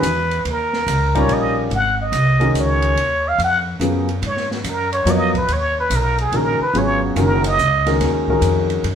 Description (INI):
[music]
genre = modal jazz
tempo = 143 BPM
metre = 3/4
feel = swing 66% on 8ths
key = G# dorian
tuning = A4 = 440 Hz
[part]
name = trumpet with plunger mute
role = melody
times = 0.0-8.0 s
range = F#4 to F#5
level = -19 LUFS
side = right 1 dB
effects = none
[part]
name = warm grand piano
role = accompaniment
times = 0.0-8.8 s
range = C#3 to C#5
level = -19 LUFS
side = left 1 dB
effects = none
[part]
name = upright bass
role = bass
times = 0.0-8.9 s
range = F#1 to G#2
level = -21 LUFS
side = equal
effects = none
[part]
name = open jazz drum kit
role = drums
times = 0.0-8.9 s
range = hi-hat, kick drum, ride cymbal, snare drum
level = -29 LUFS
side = right 1 dB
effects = none
[sound]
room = moderate studio reverb, RT60 0.8 s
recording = band playing live in one room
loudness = -15 LUFS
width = side -8 dB against mid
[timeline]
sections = 0.0-1.7 A section; 1.7-8.9 A section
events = muted trumpet solo 0.0-8.9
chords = 0.5 Eb9; 1.7 G#13sus4